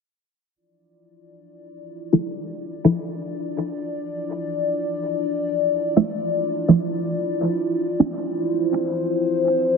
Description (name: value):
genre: techno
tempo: 125 BPM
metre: 4/4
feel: swing 54% on 16ths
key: D minor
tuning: A4 = 441 Hz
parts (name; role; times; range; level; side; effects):
- dark analog pad; sustained chords; 2.0-9.8 s; E4 to D5; -23 LUFS; left 2 dB; chorus, phaser
- filtered dub chord stab; stabs; 2.1-3.0, 6.0-8.1 s; F3 to E4; -21 LUFS; right 1 dB; phaser, cassette tape, dub echo
room: wet lush hall reverb, RT60 2.4 s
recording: dense, heavily limited modern master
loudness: -20 LUFS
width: side -5 dB against mid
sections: 0.6-9.8 A section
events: filter sweep on synth stab 0.6-9.8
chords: 0.6 Dmadd9